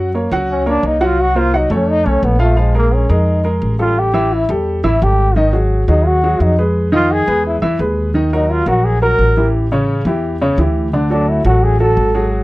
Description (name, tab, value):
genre	Afro-Cuban jazz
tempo	172 BPM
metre	4/4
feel	straight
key	unclear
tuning	A4 = 440 Hz
part	warm upright piano	accompaniment	0.0-12.4 s	C#3 to F#5	-17 LUFS	equal	none
part	upright bass	bass	0.0-12.4 s	G#1 to F#2	-16 LUFS	equal	none
part	warm trombone	melody	0.5-12.3 s	G#3 to A#4	-16 LUFS	equal	none
room	little or no reverb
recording	dry, close 1970s-style studio recording, faint mains hum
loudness	-12 LUFS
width	side -19 dB against mid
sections	0.0-2.6 A section; 2.6-12.4 A section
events	trombone solo 0.0-12.4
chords	0.0 F#; 1.2 F7b9b13/C; 1.9 Faug; 2.6 A#5; 4.0 A5; 5.4 G#m7; 6.8 Fm7b5; 7.5 E; 8.2 D#m; 9.5 A7; 10.9 D